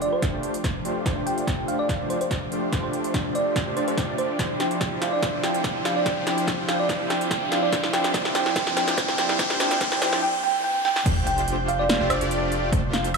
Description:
future bass; 144 BPM; 4/4; half-time; F major; A4 = 440 Hz
thumb-piano-like synth pluck; melody; 0.0-13.1 s; C5 to G5; -26 LUFS; right 2 dB; chorus, sidechain pumping, tape echo
ethereal airy pad; sustained chords; 0.0-13.2 s; F3 to G4; -35 LUFS; equal; ensemble chorus, built-in reverb, sidechain pumping
soft supersaw; riff; 0.0-13.2 s; F3 to D5; -27 LUFS; equal; sidechain pumping, low-pass filter
big-room dance drum kit; drums; 0.0-13.2 s; crash cymbal, hi-hat, snare drum, woodblock; -28 LUFS; right 1 dB; overdrive, high-pass filter on snare, high-pass filter on hats, high-pass filter on cymbals, high-pass filter on perc, high-pass filter on room
riser and sub drop; sound effects; 1.6-12.7 s; -33 LUFS; equal
electronic kick drum; drums; 0.2-12.8 s; -28 LUFS; equal; overdrive
saturated sub bass; bass; 11.1-13.2 s; F1; -29 LUFS; equal; sidechain pumping
moderate shimmer reverb, RT60 6.8 s; high-pass filter, small room reverb; -21 LUFS; side -4 dB against mid
0.0-11.1 A section; 11.1-13.2 B section
build-up 0.0-11.1; drum fill 0.0-10.2, 10.9; filter sweep on supersaw synth 0.0-11.1; filter sweep 0.0-11.1; riser 1.6-11.1; drop 11.1-13.2; impact 11.1-12.7
0.0 F69; 4.4 Dm11; 7.7 C7sus4; 11.1 F69

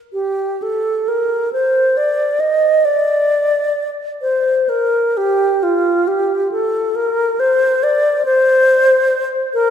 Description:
classical, free, expressive piece for unaccompanied alto flute; 36-48 BPM (dotted quarters); 6/8; rubato; A4 = 440 Hz
alto flute; solo; 0.1-9.7 s; F4 to Eb5; -13 LUFS; equal
wet church reverb, RT60 3.1 s; minimal, uncompressed stereo recording; -13 LUFS; side -8 dB against mid
0.1-9.7 A section

